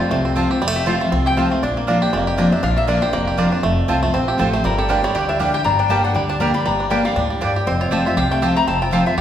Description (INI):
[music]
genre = bluegrass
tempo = 238 BPM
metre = 4/4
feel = swing 56% on 8ths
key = G minor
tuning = A4 = 441 Hz
[part]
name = lap resonator guitar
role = second line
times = 0.0-9.2 s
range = F4 to B5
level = -23 LUFS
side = left 4 dB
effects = none
[part]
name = picked steel-string acoustic guitar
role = accompaniment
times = 0.0-9.2 s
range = F2 to G4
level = -20 LUFS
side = left 2 dB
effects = none
[part]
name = bluegrass banjo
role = arpeggios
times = 0.0-9.2 s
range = G3 to G4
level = -22 LUFS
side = right 2 dB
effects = none
[part]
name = upright bass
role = bass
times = 0.1-9.2 s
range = F1 to D2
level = -25 LUFS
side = equal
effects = none
[part]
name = mandolin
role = stabs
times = 0.4-9.0 s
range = Bb3 to Bb5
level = -25 LUFS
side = right 4 dB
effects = none
[sound]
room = wet recital hall reverb, RT60 1.7 s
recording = recorded in a church or concert hall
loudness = -16 LUFS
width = side -10 dB against mid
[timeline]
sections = 0.0-5.7 A section; 5.7-9.2 A section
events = resonator guitar played with a steel bar solo 0.0-9.2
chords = 0.0 F; 1.6 Bb; 3.6 F; 4.6 Gm; 7.7 F